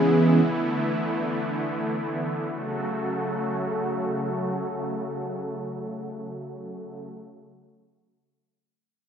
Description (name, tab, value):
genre	pop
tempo	free time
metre	none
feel	none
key	F# minor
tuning	A4 = 439 Hz
part	supersaw pad	sustained chords	0.0-7.1 s	C#3 to A4	-27 LUFS	equal	none
room	light reverb, digital ambience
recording	rough home demo mix, low-pass filter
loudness	-25 LUFS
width	side -8 dB against mid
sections	0.0-2.5 A section; 2.5-6.7 B section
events	none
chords	0.4 E7sus4; 2.5 F#m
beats	free time